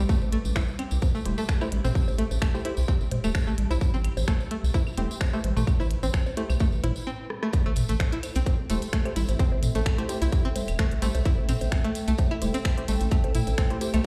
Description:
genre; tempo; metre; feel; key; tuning
minimal techno; 129 BPM; 4/4; swing 54% on 16ths; A minor; A4 = 438 Hz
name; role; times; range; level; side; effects
string-like resonator pluck; riff; 0.0-14.0 s; A3 to E4; -34 LUFS; equal; chorus, sidechain pumping, dub echo
rubbery square bass; bass; 0.0-14.0 s; E1 to C2; -28 LUFS; equal; sidechain pumping
swarming drone; texture; 0.0-14.1 s; G3 to B4; -42 LUFS; equal; none
electronic kick drum; drums; 0.1-13.7 s; none; -26 LUFS; equal; small room ambience
tambourine; percussion; 0.1-14.0 s; none; -45 LUFS; equal; none
electronic bongos, claves, congas and toms; percussion; 0.2-14.0 s; none; -36 LUFS; equal; small room ambience, tape echo
minimal click drum kit; drums; 0.3-14.0 s; finger snaps, hi-hat, rim click; -38 LUFS; equal; overdrive, small room ambience
wavetable chord stab; stabs; 1.3-13.9 s; A3 to C5; -39 LUFS; equal; tape echo
warbly tape-like pad; texture; 8.3-14.1 s; C4 to G5; -40 LUFS; equal; chorus, built-in reverb, sidechain pumping
room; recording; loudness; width
digital ambience; played on a big sound system in a bare room, large studio reverb; -26 LUFS; mono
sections
0.0-7.5 A section; 7.5-14.1 B section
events
break 7.1-7.5; drum fill 7.3; drop 7.5-14.1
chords
0.0 Am7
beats
| 0.09 0.56 1.02 1.49 | 1.95 2.42 2.88 3.35 | 3.81 4.28 4.74 5.21 | 5.67 6.14 6.60 7.07 | 7.53 8.00 8.46 8.93 | 9.39 9.86 10.32 10.79 | 11.26 11.72 12.19 12.65 | 13.12 13.58 14.05

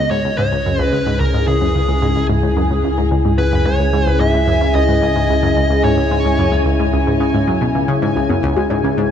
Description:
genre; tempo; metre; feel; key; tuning
ambient, sequencer-driven space music; 110 BPM; 4/4; straight; C# minor; A4 = 439 Hz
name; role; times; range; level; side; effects
dark smooth lead guitar; melody; 0.0-6.6 s; G#4 to E5; -21 LUFS; equal; overdrive, shimmer reverb, tape echo
sweeping resonant pad; sustained chords; 0.0-9.1 s; C#3 to G#5; -19 LUFS; left 2 dB; chorus, shimmer reverb
analog pluck; riff; 0.0-9.0 s; C#2 to C#3; -19 LUFS; equal; chorus, tape echo
warm sub bass; bass; 0.0-9.1 s; C#2; -20 LUFS; equal; none
bubbling stepped-filter texture; texture; 0.7-9.1 s; G#5; -28 LUFS; equal; chorus, built-in reverb, shimmer reverb
warbly dusty pluck; arpeggios; 8.2-8.9 s; B3 to C#5; -22 LUFS; left 2 dB; chorus, auto-pan, tape echo
room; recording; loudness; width
moderate plate reverb, RT60 2.9 s; none; -13 LUFS; side -8 dB against mid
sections
0.0-9.1 A section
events
none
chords
0.0 C#m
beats
0.38 0.93 | 1.47 2.02 2.56 3.11 | 3.66 4.20 4.75 5.29 | 5.84 6.38 6.93 7.47 | 8.02 8.56 9.11

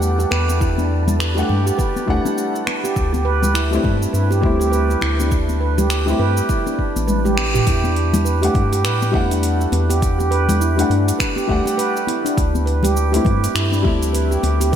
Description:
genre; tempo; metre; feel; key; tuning
organic downtempo; 102 BPM; 4/4; swing 60% on 16ths; E minor; A4 = 439 Hz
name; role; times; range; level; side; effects
felt-muted upright piano; accompaniment; 0.0-14.8 s; G3 to F#5; -23 LUFS; left 4 dB; sidechain pumping, digital delay
round analog bass; bass; 0.0-14.8 s; A1 to A2; -19 LUFS; equal; tube saturation, sidechain pumping
afro-pop drum kit; drums; 0.0-14.8 s; cabasa, finger snaps, hi-hat, toms; -25 LUFS; equal; gated reverb
wind-like tuned noise texture; texture; 0.0-7.7 s; A4; -36 LUFS; equal; none
handpan; arpeggios; 0.2-14.8 s; D4 to B4; -21 LUFS; right 4 dB; digital delay
congas; percussion; 0.2-14.7 s; none; -26 LUFS; left 3 dB; none
electronic kick drum; drums; 0.6-14.8 s; none; -21 LUFS; equal; none
room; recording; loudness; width
light reverb, digital ambience; bright 1980s-style digital production; -16 LUFS; side -9 dB against mid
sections
0.0-7.7 A section; 7.7-14.8 A section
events
drum fill 7.1-7.7; band accent 7.4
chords
0.0 Em11; 3.0 D7sus4; 7.7 Em11; 12.4 D7sus4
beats
0.02 | 0.61 1.20 1.79 2.37 | 2.96 3.55 4.14 4.73 | 5.32 5.90 6.49 7.08 | 7.67 8.26 8.85 9.43 | 10.02 10.61 11.20 11.79 | 12.37 12.96 13.55 14.14 | 14.73

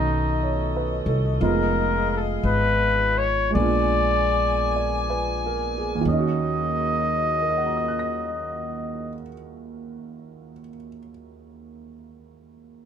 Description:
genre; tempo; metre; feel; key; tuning
jazz ballad; 44-63 BPM; 4/4; swing 66% on 8ths; Eb minor; A4 = 443 Hz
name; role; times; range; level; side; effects
warm trumpet; melody; 0.0-9.2 s; D#4 to Eb5; -24 LUFS; left 2 dB; none
warm concert grand piano; accompaniment; 0.0-12.9 s; Eb2 to Bb6; -28 LUFS; right 4 dB; none
mellow saxophone section; sustained chords; 0.0-9.2 s; Gb3 to Ab5; -31 LUFS; left 3 dB; none
upright bass; bass; 0.0-9.1 s; F1 to Eb2; -26 LUFS; left 1 dB; none
room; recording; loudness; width
light reverb; none; -20 LUFS; side -8 dB against mid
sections
0.0-6.1 A section; 6.1-11.5 B section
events
slowing down 0.0-6.1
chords
0.0 B9; 1.4 Fm7b5; 3.5 Bb7b9; 6.1 Ebm7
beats
0.42 | 1.40 2.44 3.55 4.75 | 6.06 7.42 8.76 10.10

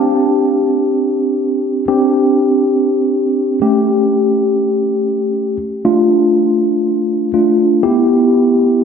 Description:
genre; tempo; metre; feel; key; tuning
pop; free time; none; none; C major; A4 = 440 Hz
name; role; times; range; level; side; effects
mellow tine electric piano; solo; 0.0-8.8 s; A3 to G4; -12 LUFS; equal; medium stereo tremolo, tape echo
room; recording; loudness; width
wet plate reverb, RT60 3.0 s; dreamy mix soaked in reverb; -12 LUFS; side -6 dB against mid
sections
0.0-7.8 A section; 7.8-8.8 B section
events
none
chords
0.0 Csus2; 3.6 A7; 5.8 Dm; 7.8 Em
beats
free time

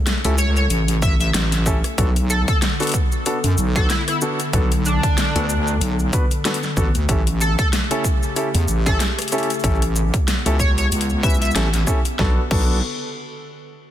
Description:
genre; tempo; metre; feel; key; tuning
glitch hop; 94 BPM; 4/4; swing 56% on 16ths; B minor; A4 = 440 Hz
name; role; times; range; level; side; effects
warbly tape-like pad; sustained chords; 0.0-12.5 s; C#3 to A4; -29 LUFS; left 1 dB; chorus, built-in reverb, vintage 12-bit sampler grit, sidechain pumping
dubstep drum kit; drums; 0.1-12.7 s; crash cymbal, hi-hat, rim click, shaker, snare drum; -25 LUFS; left 2 dB; none
dark baby grand piano; stabs; 0.2-12.8 s; B3 to B4; -26 LUFS; left 1 dB; sidechain pumping, ping-pong delay
wobble bass; bass; 0.2-12.8 s; A1 to F#2; -20 LUFS; equal; chorus, tube saturation
sync lead; melody; 0.4-11.5 s; D4 to E5; -26 LUFS; equal; wide subtle chorus, ping-pong delay
electronic kick drum; drums; 1.0-12.7 s; none; -20 LUFS; equal; none
room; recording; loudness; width
light reverb, digital ambience; dense, heavily limited modern master; -17 LUFS; side -11 dB against mid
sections
0.0-12.2 A section; 12.2-13.9 B section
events
drop 0.0-12.2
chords
0.0 A; 2.0 Bm7; 7.1 A7; 12.2 Bm7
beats
0.07 0.70 1.34 | 1.98 2.62 3.26 3.90 | 4.53 5.17 5.81 6.45 | 7.09 7.73 8.36 9.00 | 9.64 10.28 10.92 11.55 | 12.19

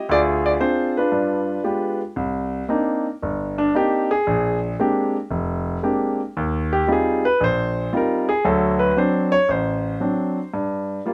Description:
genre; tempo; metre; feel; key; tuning
solo jazz; 115 BPM; 4/4; swing 67% on 8ths; unclear; A4 = 440 Hz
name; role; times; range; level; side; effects
warm concert grand piano; solo; 0.0-11.1 s; F1 to D5; -21 LUFS; equal; none
room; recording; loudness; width
moderate studio reverb, RT60 0.6 s; band playing live in one room; -21 LUFS; mono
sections
0.0-2.2 A section; 2.2-11.1 B section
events
grand piano solo 2.2-11.1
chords
0.1 Dm7b5; 1.1 G7b9; 2.2 Cm9; 4.3 Bb13; 6.3 Eb69; 8.4 D7; 10.5 N.C.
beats
| 0.07 0.59 1.12 1.64 | 2.16 2.69 3.21 3.73 | 4.25 4.78 5.30 5.82 | 6.35 6.87 7.39 7.91 | 8.44 8.96 9.48 10.01 | 10.53 11.05

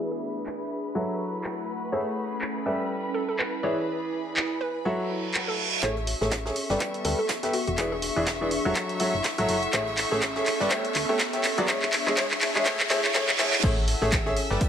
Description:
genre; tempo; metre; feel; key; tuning
piano house; 123 BPM; 4/4; swing 57% on 16ths; A major; A4 = 437 Hz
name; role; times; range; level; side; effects
hollow square pluck; melody; 0.0-13.8 s; F#4 to C#5; -34 LUFS; left 1 dB; chorus, tape echo
rich chamber violin section; sustained chords; 0.0-14.7 s; B4 to E6; -34 LUFS; left 2 dB; sidechain pumping, low-pass filter
bright upright piano; riff; 0.0-14.7 s; E3 to E5; -29 LUFS; equal; sidechain pumping, low-pass filter
warbly tape-like pad; texture; 0.0-14.7 s; A3 to A5; -33 LUFS; right 1 dB; chorus, built-in reverb, sidechain pumping
punchy analog drum machine; drums; 0.5-14.7 s; crash cymbal, handclaps, hi-hat; -28 LUFS; equal; none
reverse cymbal and riser; sound effects; 5.1-13.6 s; none; -33 LUFS; right 3 dB; none
solid FM bass; bass; 5.8-14.6 s; E1 to D2; -32 LUFS; equal; sidechain pumping
electronic kick drum; drums; 5.8-14.7 s; none; -29 LUFS; equal; high-pass filter on kick, high-pass filter on room
jazz brush drum kit; drums; 5.8-14.7 s; hi-hat, snare drum; -37 LUFS; right 2 dB; sidechain pumping on hats, high-pass filter on hats, high-pass filter on snare, high-pass filter on room
room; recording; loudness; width
moderate digital room reverb, RT60 1.1 s; high-pass filter, low-pass filter; -24 LUFS; side -8 dB against mid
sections
0.0-5.8 A section; 5.8-13.6 B section; 13.6-14.7 C section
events
filter sweep on violin section 0.0-5.8; filter sweep 0.0-5.8, 5.8-13.6; reverse cymbal 5.1-5.8, 12.7-13.6; build-up 5.8-13.6; drum fill 5.8-13.6; riser 5.8-13.6; filter sweep on upright piano 5.8-13.6; drop 13.6-14.7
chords
0.0 E7; 1.0 F#m7; 1.9 Amaj7; 2.7 G69; 3.6 E7; 4.9 F#m7; 5.8 Amaj7; 6.6 G69; 7.5 E7; 8.8 F#m7; 9.7 Amaj7; 10.5 G69; 11.4 E7; 12.7 F#m7; 13.6 Amaj7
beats
0.46 0.95 1.44 | 1.93 2.41 2.90 3.39 | 3.88 4.37 4.85 5.34 | 5.83 6.32 6.80 7.29 | 7.78 8.27 8.76 9.24 | 9.73 10.22 10.71 11.20 | 11.68 12.17 12.66 13.15 | 13.63 14.12 14.61

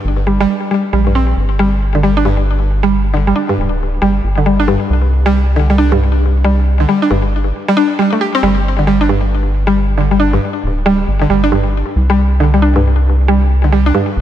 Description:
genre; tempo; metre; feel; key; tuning
IDM; 136 BPM; 4/4; swing 62% on 16ths; G minor; A4 = 443 Hz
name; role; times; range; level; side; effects
rubbery square bass; bass; 0.0-14.2 s; D1 to C2; -13 LUFS; equal; none
mallet-like synth pluck; arpeggios; 0.3-14.0 s; G2 to G4; -14 LUFS; equal; wide subtle chorus, ping-pong delay
room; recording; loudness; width
light reverb; none; -11 LUFS; side -11 dB against mid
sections
0.0-8.4 A section; 8.4-14.2 A section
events
none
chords
0.0 N.C.; 1.4 G5; 4.9 C5; 8.4 G5; 12.0 Csus2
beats
0.05 0.49 0.93 | 1.37 1.81 2.25 2.70 | 3.14 3.58 4.02 4.46 | 4.90 5.34 5.78 6.22 | 6.67 7.11 7.55 7.99 | 8.43 8.87 9.31 9.75 | 10.20 10.64 11.08 11.52 | 11.96 12.40 12.84 13.28 | 13.72 14.17

